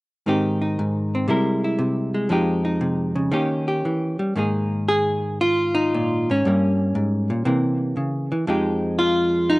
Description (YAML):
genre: solo jazz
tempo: 118 BPM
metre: 4/4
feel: swing 69% on 8ths, rubato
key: Ab major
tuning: A4 = 437 Hz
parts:
  - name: hollow-body jazz guitar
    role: solo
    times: 0.3-9.6 s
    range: F2 to Bb4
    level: -19 LUFS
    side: equal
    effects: none
room: little or no reverb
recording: recorded outdoors, with no room sound, nothing above 10.9 kHz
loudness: -19 LUFS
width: side -21 dB against mid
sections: 0.3-4.4 A section; 4.4-9.6 B section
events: none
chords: 0.3 Abmaj7; 1.3 C7b13; 2.3 Fm9; 3.3 Eb7b9; 4.4 Absus2; 6.4 Gdim; 7.5 C7b9; 8.5 Fm9